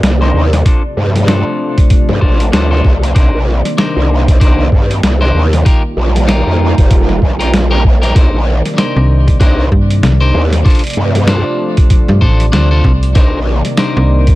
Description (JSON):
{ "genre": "glitch hop", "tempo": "96 BPM", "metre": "4/4", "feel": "swing 59% on 16ths", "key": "C dorian", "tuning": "A4 = 442 Hz", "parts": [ { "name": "warm analog pad", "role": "sustained chords", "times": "0.0-14.4 s", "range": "C3 to D5", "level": "-19 LUFS", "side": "equal", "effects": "chorus, sidechain pumping" }, { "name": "growl bass", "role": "bass", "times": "0.0-13.6 s", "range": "F1 to G2", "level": "-12 LUFS", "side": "equal", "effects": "chorus, tube saturation" }, { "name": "boom bap sampler-style drum kit", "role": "drums", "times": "0.0-14.4 s", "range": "hi-hat, snare drum", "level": "-17 LUFS", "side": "equal", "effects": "none" }, { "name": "electric guitar at the edge of break-up", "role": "stabs", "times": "0.2-14.4 s", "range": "D4 to C5", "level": "-19 LUFS", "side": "left 2 dB", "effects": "sidechain pumping, low-pass filter, tape echo" }, { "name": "electronic kick drum", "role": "drums", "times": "0.7-14.4 s", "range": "none", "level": "-9 LUFS", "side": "equal", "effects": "none" }, { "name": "slap-like FM bass", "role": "bass", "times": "9.0-14.4 s", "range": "A1 to G2", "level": "-10 LUFS", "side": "equal", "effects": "none" } ], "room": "digital ambience", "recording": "none", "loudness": "-9 LUFS", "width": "side -17 dB against mid", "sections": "0.0-14.4 A section", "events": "none", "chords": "0.0 Cm9; 0.7 Dm7; 3.2 Cm9; 5.7 F9sus4; 8.2 Cm9; 10.7 Dm7; 13.2 Cm9", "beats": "0.03 | 0.66 1.28 1.91 2.53 | 3.16 3.78 4.41 5.03 | 5.66 6.28 6.91 7.53 | 8.16 8.78 9.41 10.03 | 10.66 11.28 11.91 12.53 | 13.16 13.78" }